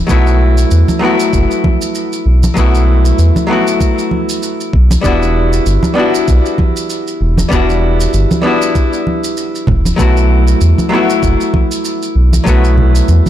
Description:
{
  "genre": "sunset chillout",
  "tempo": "97 BPM",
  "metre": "4/4",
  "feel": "swing 57% on 16ths",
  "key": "unclear",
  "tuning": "A4 = 440 Hz",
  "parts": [
    { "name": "archtop guitar, miked and amplified", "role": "accompaniment", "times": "0.0-13.3 s", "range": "F#3 to F#4", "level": "-14 LUFS", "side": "left 2 dB", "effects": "auto-pan, tape echo" },
    { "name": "round analog bass", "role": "bass", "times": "0.1-13.2 s", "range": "E1 to E2", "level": "-10 LUFS", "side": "equal", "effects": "tube saturation" },
    { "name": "electronic kick drum", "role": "drums", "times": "0.1-12.6 s", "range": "none", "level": "-14 LUFS", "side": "equal", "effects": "none" },
    { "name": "shaker", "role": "drums", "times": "0.1-13.3 s", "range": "none", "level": "-25 LUFS", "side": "right 4 dB", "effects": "none" },
    { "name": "congas", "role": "percussion", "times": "0.9-13.3 s", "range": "none", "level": "-18 LUFS", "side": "right 2 dB", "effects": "none" }
  ],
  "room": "light reverb",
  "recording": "blown-out, overdriven recording, overdrive",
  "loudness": "-10 LUFS",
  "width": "side -11 dB against mid",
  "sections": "0.0-13.3 A section",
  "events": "none",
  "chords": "0.1 B7sus4; 5.0 Em9; 10.0 B7sus4"
}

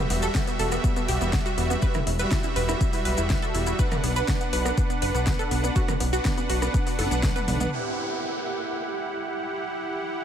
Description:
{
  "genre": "progressive house",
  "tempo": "122 BPM",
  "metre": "4/4",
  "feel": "straight",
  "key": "E minor",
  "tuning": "A4 = 440 Hz",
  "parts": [
    { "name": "wide unison pluck", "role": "arpeggios", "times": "0.0-7.7 s", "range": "B3 to B4", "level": "-30 LUFS", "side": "right 1 dB", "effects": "sidechain pumping, dub echo" },
    { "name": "soft supersaw", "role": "stabs", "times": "0.0-10.2 s", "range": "G3 to F#5", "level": "-29 LUFS", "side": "right 2 dB", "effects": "sidechain pumping, dub echo" },
    { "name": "fat analog bass", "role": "bass", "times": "0.1-7.7 s", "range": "E1 to B1", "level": "-27 LUFS", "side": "left 1 dB", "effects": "tube saturation, sidechain pumping" },
    { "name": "deep house drum kit", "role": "drums", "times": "0.1-7.7 s", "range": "hi-hat, snare drum, toms", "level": "-32 LUFS", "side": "left 1 dB", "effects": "overdrive" },
    { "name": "maracas", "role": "percussion", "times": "0.2-7.7 s", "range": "none", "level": "-38 LUFS", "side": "left 5 dB", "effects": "none" },
    { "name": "electronic kick drum", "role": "drums", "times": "0.3-7.3 s", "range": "none", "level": "-26 LUFS", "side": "left 1 dB", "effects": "overdrive" },
    { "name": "punchy analog drum machine", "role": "percussion", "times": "0.7-6.7 s", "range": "congas, rim click, toms", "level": "-33 LUFS", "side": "right 2 dB", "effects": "sidechain pumping on snare, sidechain pumping on toms, sidechain pumping on perc" },
    { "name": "downlifter", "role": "sound effects", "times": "7.7-10.2 s", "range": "none", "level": "-35 LUFS", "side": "equal", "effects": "none" }
  ],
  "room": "light reverb",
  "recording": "none",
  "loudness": "-23 LUFS",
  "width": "side -9 dB against mid",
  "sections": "0.0-7.7 A section; 7.7-10.2 B section",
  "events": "drum fill 7.0-7.7",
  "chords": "0.0 Emadd9; 3.8 Bm; 7.7 Emadd9"
}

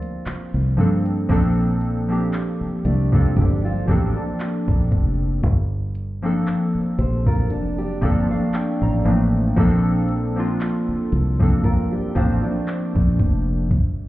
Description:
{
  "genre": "contemporary R&B",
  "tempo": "58 BPM",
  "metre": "4/4",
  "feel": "swing 54% on 16ths",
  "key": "unclear",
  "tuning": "A4 = 440 Hz",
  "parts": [
    { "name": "warm analog keys", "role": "accompaniment", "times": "0.0-13.7 s", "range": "F3 to Bb5", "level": "-22 LUFS", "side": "equal", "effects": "chorus" },
    { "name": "fingerpicked steel-string acoustic guitar", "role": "arpeggios", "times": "0.0-13.7 s", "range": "A3 to C5", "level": "-29 LUFS", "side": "right 1 dB", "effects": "tape echo" },
    { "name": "smooth R&B drum kit", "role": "drums", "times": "0.0-14.0 s", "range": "handclaps, hi-hat, kick drum", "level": "-21 LUFS", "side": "equal", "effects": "none" },
    { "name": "fingered electric bass", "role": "bass", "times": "0.3-14.1 s", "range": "F1 to G2", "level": "-21 LUFS", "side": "equal", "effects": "none" }
  ],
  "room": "digital ambience",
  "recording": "heard muffled through a wall, club reverb, EQ",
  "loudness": "-18 LUFS",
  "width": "side -16 dB against mid",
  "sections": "0.0-1.3 A section; 1.3-14.1 B section",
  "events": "synth keys fill 7.5-9.6",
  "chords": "0.0 Gm11"
}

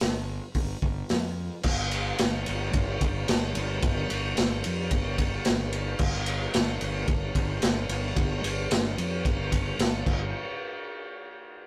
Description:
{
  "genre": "garage rock duo or trio",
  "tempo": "111 BPM",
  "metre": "4/4",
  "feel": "straight",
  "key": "unclear",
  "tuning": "A4 = 442 Hz",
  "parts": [
    { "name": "fuzz fingered electric bass", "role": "bass", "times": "0.0-10.3 s", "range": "G1 to F2", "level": "-34 LUFS", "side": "equal", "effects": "overdrive" },
    { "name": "raw garage drum kit", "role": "drums", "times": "0.0-10.2 s", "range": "crash cymbal, hi-hat, kick drum, ride cymbal, snare drum", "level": "-29 LUFS", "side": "equal", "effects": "none" }
  ],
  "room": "little or no reverb",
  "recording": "rough rehearsal-room recording",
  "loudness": "-28 LUFS",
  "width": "mono",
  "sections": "0.0-1.7 A section; 1.7-10.3 B section; 10.3-11.7 C section",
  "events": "none",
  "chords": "none"
}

